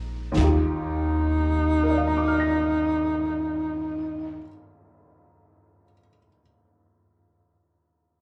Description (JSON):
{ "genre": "jazz ballad", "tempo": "41 BPM", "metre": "4/4", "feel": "swing 68% on 8ths", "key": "Eb major", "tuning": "A4 = 440 Hz", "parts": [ { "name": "clear upright piano", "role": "accompaniment", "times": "0.0-8.2 s", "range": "Eb2 to Bb6", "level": "-32 LUFS", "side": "equal", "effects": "slapback echo" }, { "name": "upright bass", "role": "bass", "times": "0.0-4.4 s", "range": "Bb1 to Eb2", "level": "-30 LUFS", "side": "equal", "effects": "none" }, { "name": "growling tenor saxophone", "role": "melody", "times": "0.4-4.4 s", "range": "Eb4", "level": "-27 LUFS", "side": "equal", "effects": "slapback echo" }, { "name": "vintage brush drum kit", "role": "drums", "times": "0.4-0.8 s", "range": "kick drum, snare drum", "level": "-31 LUFS", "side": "equal", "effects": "none" } ], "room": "moderate club reverb, RT60 0.7 s", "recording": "live gig heard through the venue's PA, club reverb", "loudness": "-24 LUFS", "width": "mono", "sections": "0.4-6.1 A section", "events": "none", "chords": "0.4 Ebmaj9", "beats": "| 0.35 1.80 3.25 4.70" }